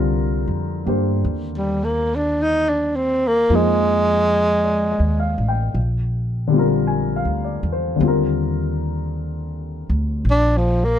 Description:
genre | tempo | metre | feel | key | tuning
jazz ballad | 53 BPM | 4/4 | swing 68% on 8ths | C minor | A4 = 440 Hz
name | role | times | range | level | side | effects
dark baby grand piano | accompaniment | 0.0-11.0 s | D3 to Ab5 | -22 LUFS | left 3 dB | none
upright bass | bass | 0.0-11.0 s | A1 to G2 | -22 LUFS | equal | none
breathy tenor saxophone | melody | 1.6-11.0 s | F3 to Eb4 | -18 LUFS | right 1 dB | none
room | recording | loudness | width
little or no reverb | close, detailed microphones | -17 LUFS | side -10 dB against mid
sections
0.0-11.0 A section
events
tenor saxophone solo 0.0-11.0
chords
0.0 Cm11; 3.5 Fm7; 5.8 Bb; 8.0 Ebmaj9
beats
0.11 1.24 2.38 | 3.51 4.63 5.76 6.89 | 8.01 9.13 10.25

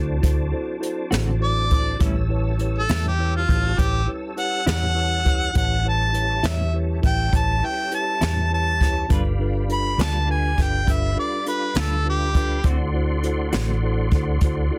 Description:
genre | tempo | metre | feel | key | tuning
slow blues | 68 BPM (dotted quarters) | 12/8 | straight | unclear | A4 = 437 Hz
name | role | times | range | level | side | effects
mellow tine electric piano | accompaniment | 0.0-14.8 s | D4 to E5 | -33 LUFS | equal | none
tonewheel organ | sustained chords | 0.0-14.8 s | F#3 to E5 | -35 LUFS | equal | slow rotary speaker, chorus vibrato
vintage muted fingered electric bass | bass | 0.0-14.7 s | G1 to E2 | -25 LUFS | equal | none
jazz brush drum kit | drums | 0.2-14.6 s | hi-hat, kick drum, snare drum | -25 LUFS | equal | soft clipping on snare
clean electric guitar | accompaniment | 1.1-13.7 s | A2 to B4 | -30 LUFS | equal | tremolo
clear harmonica | melody | 1.4-12.7 s | F4 to B5 | -26 LUFS | equal | overdrive
room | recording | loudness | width
little or no reverb | dense, heavily limited modern master | -22 LUFS | mono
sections
0.0-14.8 A section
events
harmonica solo 0.0-14.8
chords
0.0 D7; 2.0 A7; 9.1 G7; 12.7 D7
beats
0.23 1.12 | 2.01 2.89 3.78 4.67 | 5.55 6.44 7.33 8.22 | 9.10 9.99 10.88 11.77 | 12.65 13.54 14.43

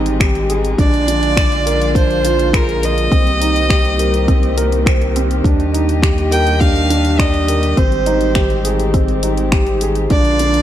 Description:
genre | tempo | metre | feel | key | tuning
piano and strings electronica | 103 BPM | 4/4 | straight | Eb major | A4 = 439 Hz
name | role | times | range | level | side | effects
dark string quartet | sustained chords | 0.0-10.6 s | D3 to Eb5 | -23 LUFS | left 2 dB | sidechain pumping
felt-muted upright piano | riff | 0.0-10.6 s | C4 to D5 | -18 LUFS | right 2 dB | tape echo
round analog bass | bass | 0.0-10.6 s | Ab1 to Eb2 | -18 LUFS | equal | sidechain pumping
deep house drum kit | drums | 0.1-10.6 s | finger snaps, hi-hat | -24 LUFS | left 1 dB | none
electronic kick drum | drums | 0.2-10.2 s | none | -15 LUFS | left 1 dB | none
clear violin | melody | 0.8-10.6 s | Bb4 to G5 | -19 LUFS | right 1 dB | tape echo
room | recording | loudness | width
light reverb, small room ambience | none | -12 LUFS | side -11 dB against mid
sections
0.0-10.6 A section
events
none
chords
0.0 Abmaj7; 0.8 Bb7; 3.1 Cm7; 5.4 Ebmaj7; 7.8 Abmaj7; 10.1 Bb7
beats
0.20 | 0.79 1.37 1.95 2.53 | 3.12 3.70 4.28 4.86 | 5.45 6.03 6.61 7.19 | 7.78 8.36 8.94 9.52 | 10.11

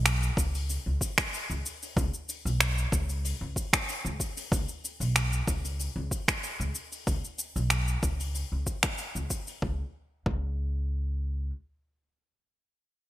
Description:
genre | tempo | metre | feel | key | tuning
sunset chillout | 94 BPM | 4/4 | straight | unclear | A4 = 442 Hz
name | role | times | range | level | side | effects
upright bass | bass | 0.0-11.5 s | B1 to C#2 | -30 LUFS | equal | none
jazz brush drum kit | drums | 0.1-9.6 s | cabasa, finger snaps, hi-hat | -30 LUFS | equal | gated reverb
electronic kick drum | drums | 0.4-10.5 s | none | -30 LUFS | equal | overdrive
room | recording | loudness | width
little or no reverb | bright 1980s-style digital production | -28 LUFS | side -14 dB against mid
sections
0.0-9.6 A section; 9.6-12.2 B section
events
none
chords
none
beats
0.05 0.69 1.33 | 1.96 2.60 3.24 3.88 | 4.52 5.16 5.79 6.43 | 7.07 7.71 8.35 8.98 | 9.62 10.26 10.90

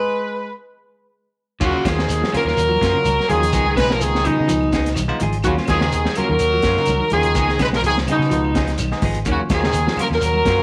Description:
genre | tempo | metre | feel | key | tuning
afrobeat | 126 BPM | 4/4 | swing 53% on 16ths | Eb minor | A4 = 441 Hz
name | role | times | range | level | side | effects
warm horn section | melody | 0.0-10.6 s | Eb4 to Cb5 | -22 LUFS | equal | none
trombone with metal mute | second line | 0.0-10.6 s | Cb3 to Ab3 | -30 LUFS | equal | none
clean electric guitar | arpeggios | 1.6-10.6 s | Db3 to F3 | -31 LUFS | equal | none
semi-hollow electric guitar | stabs | 1.6-10.6 s | F3 to Ab4 | -30 LUFS | equal | none
fingered electric bass | bass | 1.6-10.6 s | Ab1 to Db3 | -25 LUFS | equal | none
crunchy breakbeat drum kit | drums | 1.6-10.6 s | crash cymbal, hi-hat, kick drum, snare drum | -27 LUFS | equal | none
claves | percussion | 1.6-10.5 s | none | -41 LUFS | equal | none
shekere | percussion | 1.6-10.6 s | none | -34 LUFS | equal | none
barky tine electric piano | accompaniment | 1.7-10.6 s | Gb3 to Ab4 | -32 LUFS | equal | none
congas | percussion | 1.9-10.5 s | none | -32 LUFS | equal | none
room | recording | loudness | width
light reverb, studio reverb | none | -18 LUFS | mono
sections
0.0-1.6 A section; 1.6-10.6 B section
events
stop 0.0-1.6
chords
0.0 N.C.; 1.6 Ebm9; 3.5 Db9; 5.4 Ebm9; 7.4 Db9; 9.3 Ebm9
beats
0.19 0.67 1.14 | 1.62 2.10 2.58 3.06 | 3.54 4.01 4.49 4.97 | 5.45 5.92 6.40 6.88 | 7.36 7.83 8.31 8.79 | 9.27 9.74 10.22

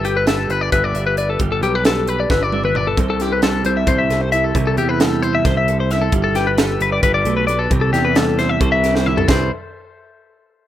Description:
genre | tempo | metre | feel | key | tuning
math rock and midwest emo | 266 BPM (eighths) | 7/8 | straight | C major | A4 = 439 Hz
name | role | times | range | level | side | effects
twelve-string electric guitar | accompaniment | 0.0-9.5 s | C3 to E5 | -22 LUFS | right 6 dB | none
twelve-string electric guitar | arpeggios | 0.0-9.5 s | G4 to E5 | -19 LUFS | left 4 dB | spring reverb
modern bright picked electric bass | bass | 0.0-9.5 s | G1 to E2 | -21 LUFS | equal | none
crisp fusion drum kit | drums | 0.0-9.4 s | hi-hat, kick drum, ride cymbal, snare drum, toms | -20 LUFS | equal | none
room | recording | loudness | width
little or no reverb | rough home demo mix | -15 LUFS | side -12 dB against mid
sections
0.0-9.3 A section; 9.3-10.7 B section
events
drum fill 2.3-3.0, 8.9-9.3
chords
0.0 G69; 3.0 C6; 6.1 Gadd9; 7.7 Cmaj7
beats
0.04 0.27 0.49 0.72 0.94 1.17 | 1.40 1.62 1.85 2.07 2.30 2.52 2.75 | 2.98 3.20 3.42 3.65 3.88 4.10 4.33 | 4.55 4.78 5.00 5.23 5.45 5.68 5.90 | 6.13 6.35 6.58 6.80 7.03 7.25 7.48 | 7.70 7.93 8.15 8.38 8.61 8.83 9.06 | 9.28

